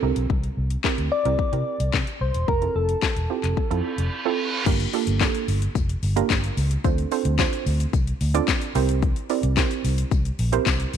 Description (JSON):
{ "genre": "dance-pop", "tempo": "110 BPM", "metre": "4/4", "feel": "straight", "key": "G dorian", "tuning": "A4 = 440 Hz", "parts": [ { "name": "soft round pluck", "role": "accompaniment", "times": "0.0-10.9 s", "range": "Bb3 to D5", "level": "-26 LUFS", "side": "right 12 dB", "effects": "chorus, sidechain pumping" }, { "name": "vintage muted fingered electric bass", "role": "bass", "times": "0.0-11.0 s", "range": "E1 to C3", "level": "-24 LUFS", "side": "equal", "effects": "sidechain pumping" }, { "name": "house drum kit", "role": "drums", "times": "0.2-11.0 s", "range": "crash cymbal, handclaps, hi-hat, kick drum, shaker, snare drum", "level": "-25 LUFS", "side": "left 3 dB", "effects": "none" }, { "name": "soft struck synth lead", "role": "melody", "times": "1.1-4.1 s", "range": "A4 to D5", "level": "-26 LUFS", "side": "left 2 dB", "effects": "chorus, slapback echo" }, { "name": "reverse cymbal", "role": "sound effects", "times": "3.8-4.7 s", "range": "none", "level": "-30 LUFS", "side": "right 4 dB", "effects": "none" }, { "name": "tambourine", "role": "percussion", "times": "4.7-11.0 s", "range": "none", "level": "-41 LUFS", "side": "left 16 dB", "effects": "none" } ], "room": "light reverb, digital ambience", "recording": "1960s-style stereo with parts hard left and right", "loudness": "-20 LUFS", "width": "side -8 dB against mid", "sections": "0.0-4.7 A section; 4.7-11.0 B section", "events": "reverse cymbal 3.8-4.7; drop 4.7-11.0", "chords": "0.0 C7; 2.5 Fmaj7; 4.7 Gm7; 6.8 Dm7; 8.8 C7", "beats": "| 0.30 0.84 1.39 1.94 | 2.48 3.03 3.57 4.12 | 4.66 5.21 5.75 6.30 | 6.84 7.39 7.93 8.48 | 9.03 9.57 10.12 10.66" }